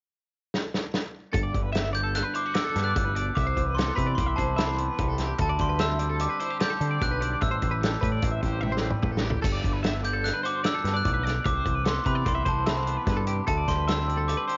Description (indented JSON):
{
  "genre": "math rock and midwest emo",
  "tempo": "148 BPM",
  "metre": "5/4",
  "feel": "straight",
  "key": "G major",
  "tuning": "A4 = 440 Hz",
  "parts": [
    { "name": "loose indie drum kit", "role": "drums", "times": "0.5-14.6 s", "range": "crash cymbal, hi-hat, kick drum, snare drum, toms", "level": "-32 LUFS", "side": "equal", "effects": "cassette tape" },
    { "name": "electric guitar at the edge of break-up", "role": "accompaniment", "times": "1.3-14.6 s", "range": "G2 to G4", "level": "-39 LUFS", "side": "equal", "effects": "cassette tape" },
    { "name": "twelve-string electric guitar", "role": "arpeggios", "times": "1.3-14.6 s", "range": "G4 to E5", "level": "-36 LUFS", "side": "equal", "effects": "tremolo, cassette tape" },
    { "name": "growling picked electric bass", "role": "bass", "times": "1.3-14.3 s", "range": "G1 to D3", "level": "-31 LUFS", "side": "equal", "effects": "overdrive" },
    { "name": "glockenspiel with hard plastic mallets", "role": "melody", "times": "1.9-14.6 s", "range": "A5 to G6", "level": "-32 LUFS", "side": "equal", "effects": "cassette tape" }
  ],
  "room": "little or no reverb",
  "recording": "home recording on cassette, nothing above 7.5 kHz",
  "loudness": "-26 LUFS",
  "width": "mono",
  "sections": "0.0-1.3 A section; 1.3-14.6 B section",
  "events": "drum fill 0.5-1.3, 8.6-9.4",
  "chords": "0.0 N.C.; 1.3 Gmaj9; 3.4 Cmaj7; 5.4 D7sus4; 7.4 Am7; 9.4 Gmaj9; 11.5 Cmaj7; 13.5 D7sus4"
}